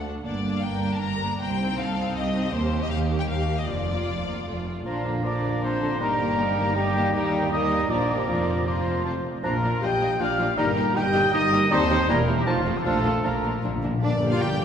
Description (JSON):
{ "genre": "quick classical-period movement for symphony orchestra", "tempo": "157 BPM", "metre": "3/4", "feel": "straight", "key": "Bb major", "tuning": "A4 = 440 Hz", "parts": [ { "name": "rich chamber violin section", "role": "melody", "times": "0.0-14.6 s", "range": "C4 to Bb5", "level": "-33 LUFS", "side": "left 5 dB", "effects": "none" }, { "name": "rich chamber violin section", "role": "second line", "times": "0.0-14.6 s", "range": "Bb3 to G5", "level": "-34 LUFS", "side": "left 2 dB", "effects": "none" }, { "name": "rich studio viola section", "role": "accompaniment", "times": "0.0-14.6 s", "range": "D3 to G4", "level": "-32 LUFS", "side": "right 1 dB", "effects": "none" }, { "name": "clear symphonic double bass section", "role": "bass", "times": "0.0-14.6 s", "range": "E1 to Eb2", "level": "-31 LUFS", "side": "right 2 dB", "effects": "none" }, { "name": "warm chamber cello section", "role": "bass", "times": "0.0-14.6 s", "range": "C2 to G4", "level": "-30 LUFS", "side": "right 2 dB", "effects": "none" }, { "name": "clear clarinet", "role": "second line", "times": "4.9-13.0 s", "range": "D4 to F4", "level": "-34 LUFS", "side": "equal", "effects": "none" }, { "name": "small flute group", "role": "second line", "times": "4.9-13.6 s", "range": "F5 to G6", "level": "-32 LUFS", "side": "left 2 dB", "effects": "none" }, { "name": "warm oboe", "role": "second line", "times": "4.9-13.0 s", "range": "F5 to Bb5", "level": "-33 LUFS", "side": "right 1 dB", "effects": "none" }, { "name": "mellow bassoon", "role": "accompaniment", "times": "4.9-13.0 s", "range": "F3 to G3", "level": "-32 LUFS", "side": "right 1 dB", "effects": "none" }, { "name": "mellow French horn section", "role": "sustained chords", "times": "4.9-14.6 s", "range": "F3 to G4", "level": "-30 LUFS", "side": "left 1 dB", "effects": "none" }, { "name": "warm trumpet section", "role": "stabs", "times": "4.9-13.6 s", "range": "F4 to G5", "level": "-27 LUFS", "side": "equal", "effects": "none" }, { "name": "timpani", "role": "percussion", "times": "8.3-8.8, 12.9-14.0 s", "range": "F2 to Bb2", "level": "-30 LUFS", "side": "left 2 dB", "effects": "none" } ], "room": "wet church reverb, RT60 3.1 s", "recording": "recorded in a church or concert hall", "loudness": "-22 LUFS", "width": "side -8 dB against mid", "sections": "0.0-4.9 A section; 4.9-14.0 B section", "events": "timpani fill 12.9-14.0", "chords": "0.3 Gm; 1.4 Cm; 2.5 Eb69; 3.7 Bb/F; 4.5 F; 4.9 Bb; 6.0 Eb/G; 7.1 Eb; 7.9 Bb; 8.3 Fsus4; 9.1 F; 9.4 Bb; 10.6 Eb/G; 11.7 Eb; 12.1 Edim7; 12.5 F7; 12.9 Bb; 14.0 Gm" }